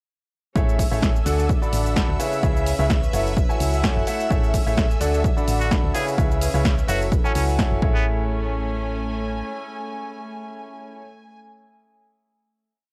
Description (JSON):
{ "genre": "piano house", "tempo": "128 BPM", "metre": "4/4", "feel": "swing 53% on 16ths", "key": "A major", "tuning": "A4 = 440 Hz", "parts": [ { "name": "string machine, violins", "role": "sustained chords", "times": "0.6-7.8 s", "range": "E5 to E6", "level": "-36 LUFS", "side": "equal", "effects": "ensemble chorus, sidechain pumping" }, { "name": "bright grand piano", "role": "riff", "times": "0.6-11.0 s", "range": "C#3 to B5", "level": "-29 LUFS", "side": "equal", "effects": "sidechain pumping, delay" }, { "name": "solid FM bass", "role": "bass", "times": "0.6-9.4 s", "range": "F#1 to D2", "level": "-27 LUFS", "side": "equal", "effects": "sidechain pumping" }, { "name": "electronic kick drum", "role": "drums", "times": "0.6-7.9 s", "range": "none", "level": "-24 LUFS", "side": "equal", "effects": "none" }, { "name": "house drum kit", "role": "drums", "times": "0.6-7.7 s", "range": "hi-hat, shaker, snare drum", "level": "-31 LUFS", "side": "equal", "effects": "none" }, { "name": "rich chamber string section", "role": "texture", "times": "0.6-11.4 s", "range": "A3 to G#5", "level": "-34 LUFS", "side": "equal", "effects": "sidechain pumping" }, { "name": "trumpet with straight mute", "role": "melody", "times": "5.6-8.1 s", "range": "B3 to G#4", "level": "-32 LUFS", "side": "equal", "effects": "delay" } ], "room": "light reverb, small room reverb", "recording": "none", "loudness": "-21 LUFS", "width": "mono", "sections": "0.6-8.1 groove; 8.1-11.8 final chord", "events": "none", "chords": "0.6 Amaj7; 1.3 D; 2.2 C#m7; 3.1 F#m7; 4.3 Amaj7; 5.0 D; 5.9 C#m7; 6.9 F#m7; 7.8 Amaj7" }